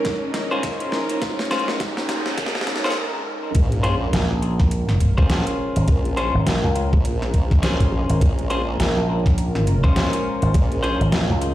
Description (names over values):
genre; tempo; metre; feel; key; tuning
glitch hop; 103 BPM; 4/4; swing 59% on 16ths; Bb minor; A4 = 440 Hz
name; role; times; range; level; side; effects
warm analog pad; sustained chords; 0.0-11.5 s; Ab3 to Bb4; -27 LUFS; equal; chorus, sidechain pumping
dubstep drum kit; drums; 0.0-11.5 s; hi-hat, snare drum; -27 LUFS; equal; none
riser, noise sweep and sub drop; sound effects; 0.0-5.9 s; none; -29 LUFS; equal; none
rich chamber string section; texture; 0.0-3.0 s; Db4 to Bb4; -32 LUFS; equal; none
electronic kick drum; drums; 0.1-10.7 s; none; -18 LUFS; equal; none
clean electric guitar; stabs; 0.5-11.0 s; Db4 to C5; -26 LUFS; left 2 dB; sidechain pumping, ping-pong delay
formant-sweep wobble bass; bass; 3.6-11.0 s; Bb1; -23 LUFS; equal; chorus
slap bass with an envelope filter; bass; 4.1-11.5 s; Ab1 to F2; -20 LUFS; equal; tube saturation
room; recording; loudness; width
light reverb, digital ambience; played on a big sound system in a bare room, stone room reverb, vinyl crackle, high-pass filter; -18 LUFS; side -14 dB against mid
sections
0.0-3.6 A section; 3.6-11.5 B section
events
build-up 0.0-3.6; drum fill 0.0-3.0; riser 0.0-3.0; noise sweep 1.2-3.6; break 3.0-3.6; drop 3.6-11.5; impact 3.6-5.9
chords
0.0 Bbm7